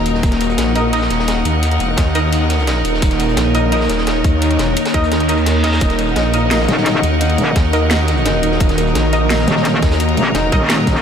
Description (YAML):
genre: dark technical drum and bass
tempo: 172 BPM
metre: 4/4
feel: straight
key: Eb minor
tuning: A4 = 440 Hz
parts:
  - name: metallic inharmonic drone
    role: sustained chords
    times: 0.0-11.0 s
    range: Eb3 to Gb4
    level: -19 LUFS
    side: equal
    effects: chorus, built-in reverb, phaser, sidechain pumping
  - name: orchestra-hit-like synth stab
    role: stabs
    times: 0.0-11.0 s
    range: Eb4 to Eb5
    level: -22 LUFS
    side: right 1 dB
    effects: built-in reverb, vintage 12-bit sampler grit, ping-pong delay
  - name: snarling distorted saw bass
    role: bass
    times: 0.0-10.5 s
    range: Eb1 to Eb2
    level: -18 LUFS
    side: equal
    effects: distortion, tube saturation, sidechain pumping
  - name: bright chamber string section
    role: texture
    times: 0.0-11.0 s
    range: Eb4 to Bb5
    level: -23 LUFS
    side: equal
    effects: sidechain pumping
  - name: crunchy breakbeat drum kit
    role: drums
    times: 0.1-11.0 s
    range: hi-hat, snare drum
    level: -27 LUFS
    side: equal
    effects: high-pass filter on hats, studio ambience, high-pass filter on snare, high-pass filter on room
  - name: drum and bass drum kit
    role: drums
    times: 0.1-10.9 s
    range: hi-hat, snare drum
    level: -23 LUFS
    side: equal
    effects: overdrive, studio ambience
  - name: electronic kick drum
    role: drums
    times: 0.2-10.9 s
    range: none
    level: -16 LUFS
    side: equal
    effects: overdrive, studio ambience
  - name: reverse cymbal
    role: sound effects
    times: 5.3-5.8 s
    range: none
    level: -31 LUFS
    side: right 1 dB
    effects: none
  - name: felt-muted upright piano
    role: arpeggios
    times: 5.8-11.0 s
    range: Eb4 to Eb5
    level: -23 LUFS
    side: left 2 dB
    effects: sidechain pumping, ping-pong delay
  - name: metallic wobble bass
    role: bass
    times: 6.7-11.0 s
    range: Eb1 to Fb1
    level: -16 LUFS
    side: equal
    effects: chorus
room: wet huge ambient reverb, RT60 8.7 s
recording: dreamy mix soaked in reverb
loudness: -13 LUFS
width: side -8 dB against mid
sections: 0.0-11.0 A section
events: kick drops out 5.1-5.8; reverse cymbal 5.3-5.8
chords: 0.0 Ebm